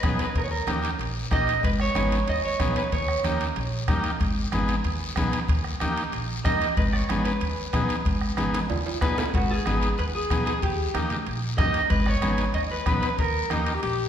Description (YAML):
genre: latin, cumbia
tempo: 187 BPM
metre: 4/4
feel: straight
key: G# harmonic minor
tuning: A4 = 439 Hz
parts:
  - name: electric guitar at the edge of break-up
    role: melody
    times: 0.0-3.2, 6.4-13.5 s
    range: F#4 to D#5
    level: -28 LUFS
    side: right 2 dB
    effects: spring reverb
  - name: combo organ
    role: accompaniment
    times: 0.0-13.7 s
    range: A#3 to B4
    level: -30 LUFS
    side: left 2 dB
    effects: none
  - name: upright bass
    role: bass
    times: 0.0-14.1 s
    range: G#1 to G2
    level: -28 LUFS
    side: equal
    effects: none
  - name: bombo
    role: percussion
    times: 0.0-13.7 s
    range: none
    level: -28 LUFS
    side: left 1 dB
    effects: none
  - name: congas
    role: percussion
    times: 0.0-14.0 s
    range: none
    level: -34 LUFS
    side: right 2 dB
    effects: none
  - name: guiro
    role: percussion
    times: 0.0-14.1 s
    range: none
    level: -39 LUFS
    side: left 5 dB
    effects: none
  - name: timbales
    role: percussion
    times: 0.0-14.0 s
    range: none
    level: -38 LUFS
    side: right 6 dB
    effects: none
  - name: clear tenor saxophone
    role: second line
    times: 13.5-14.1 s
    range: D#4 to G4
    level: -28 LUFS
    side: left 6 dB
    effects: none
room: wet scoring stage reverb, RT60 1.9 s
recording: recorded in a church or concert hall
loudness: -22 LUFS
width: side -9 dB against mid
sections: 0.0-9.3 A section; 9.3-14.1 A section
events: drum fill 8.4-9.3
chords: 0.4 D#; 1.6 G#m; 2.9 D#7; 4.2 G#m; 5.5 D#; 6.8 G#m; 10.6 D#; 11.9 G#m; 13.2 D#